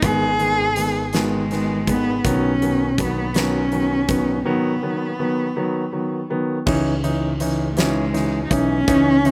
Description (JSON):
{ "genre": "six-eight pop ballad", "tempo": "54 BPM (dotted quarters)", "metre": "6/8", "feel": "straight", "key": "unclear", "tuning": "A4 = 441 Hz", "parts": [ { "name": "warm cello", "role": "melody", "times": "0.0-9.3 s", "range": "G#3 to G#4", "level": "-24 LUFS", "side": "equal", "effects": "none" }, { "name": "warm grand piano", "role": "accompaniment", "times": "0.0-9.3 s", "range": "D#3 to D#4", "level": "-24 LUFS", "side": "equal", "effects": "none" }, { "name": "fingered electric bass", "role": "bass", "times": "0.0-9.3 s", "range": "G#1 to C#2", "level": "-29 LUFS", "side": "equal", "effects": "none" }, { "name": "huge arena drum kit", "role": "drums", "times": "0.0-9.3 s", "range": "crash cymbal, hi-hat, kick drum, snare drum", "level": "-28 LUFS", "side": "equal", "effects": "none" } ], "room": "little or no reverb", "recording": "none", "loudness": "-20 LUFS", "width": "mono", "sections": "0.0-6.7 A section; 6.7-9.3 B section", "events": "break 4.5-6.7", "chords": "0.0 G#m; 2.2 B; 6.7 C#madd9" }